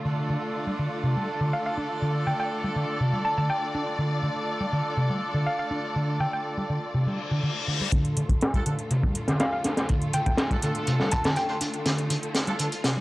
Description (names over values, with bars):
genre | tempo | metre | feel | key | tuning
breakbeat, breaks | 122 BPM | 4/4 | straight | D minor pentatonic | A4 = 440 Hz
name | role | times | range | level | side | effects
warm studio string section | sustained chords | 0.0-13.0 s | D3 to D5 | -33 LUFS | left 1 dB | sidechain pumping
vintage muted picked electric bass | riff | 0.1-13.0 s | C3 to D4 | -27 LUFS | equal | overdrive, low-pass filter, tape echo
warm horn section | stabs | 0.1-12.7 s | D4 to C5 | -33 LUFS | right 2 dB | tape echo
mallet-like synth pluck | melody | 1.5-6.4, 9.4-11.9 s | F5 to A5 | -31 LUFS | equal | chorus, telephone sound, cassette tape, tape echo
reverse cymbal and riser | sound effects | 7.1-13.0 s | none | -36 LUFS | left 4 dB | none
crunchy breakbeat drum kit | drums | 7.9-13.0 s | hi-hat, kick drum, snare drum | -26 LUFS | equal | low-pass filter on kick, low-pass filter on hats, low-pass filter on snare, low-pass filter on room
electronic hi-hat | drums | 7.9-12.9 s | none | -34 LUFS | equal | none
room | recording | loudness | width
light reverb, small room ambience | dry, gritty hardware recording, cassette tape, high-pass filter | -24 LUFS | side -18 dB against mid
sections
0.0-7.9 A section; 7.9-13.0 B section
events
reverse cymbal 7.1-7.9; build-up 7.9-13.0; filter sweep on drum 7.9-13.0; filter sweep on picked electric bass 7.9-13.0; filter sweep 7.9-13.0; drum fill 11.9-13.0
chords
0.0 Dm